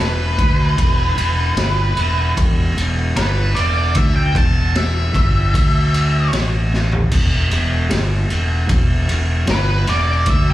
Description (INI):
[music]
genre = blues rock power trio and southern rock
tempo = 76 BPM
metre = 4/4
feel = straight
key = E minor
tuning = A4 = 440 Hz
[part]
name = octave-fuzz lead guitar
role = melody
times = 0.0-10.5 s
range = B4 to A5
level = -21 LUFS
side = equal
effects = distortion, slapback echo
[part]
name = fuzz fingered electric bass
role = bass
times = 0.0-10.5 s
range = E1 to D2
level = -17 LUFS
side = equal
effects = overdrive
[part]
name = raw garage drum kit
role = drums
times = 0.4-10.5 s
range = crash cymbal, kick drum, ride cymbal, snare drum, toms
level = -18 LUFS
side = equal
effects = none
[sound]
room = studio reverb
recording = live gig heard through the venue's PA, club reverb, faint mains hum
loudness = -14 LUFS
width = side -14 dB against mid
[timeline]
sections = 0.0-10.5 A section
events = lead electric guitar solo 0.0-10.5; drum fill 6.7-7.1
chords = 0.0 Em; 5.5 Dsus2; 6.3 N.C.; 7.1 Em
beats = 0.00 | 0.79 1.58 2.37 3.17 | 3.96 4.75 5.54 6.33 | 7.12 7.91 8.70 9.48 | 10.27